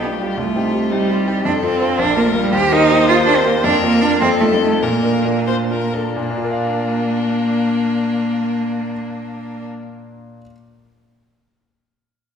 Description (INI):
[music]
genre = quick classical-period movement for piano trio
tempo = 85-112 BPM (dotted quarters)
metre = 6/8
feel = rubato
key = Bb major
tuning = A4 = 440 Hz
[part]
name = rich violin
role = melody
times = 0.0-9.7 s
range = D4 to C5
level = -23 LUFS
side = left 5 dB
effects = none
[part]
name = rich cello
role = second line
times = 0.0-9.7 s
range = G3 to G4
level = -17 LUFS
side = right 2 dB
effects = none
[part]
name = clear grand piano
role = accompaniment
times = 0.0-10.5 s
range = Bb1 to F5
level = -21 LUFS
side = left 1 dB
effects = none
[sound]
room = wet recital hall reverb, RT60 1.7 s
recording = heard from further back in the room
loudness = -14 LUFS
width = side -7 dB against mid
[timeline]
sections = 0.0-6.2 A section; 6.2-8.9 B section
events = slowing down 3.1-6.2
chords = 0.4 Cm; 1.5 F; 2.0 Bb5; 2.5 Eb; 3.6 Bb5/F; 4.2 F7; 4.8 Bb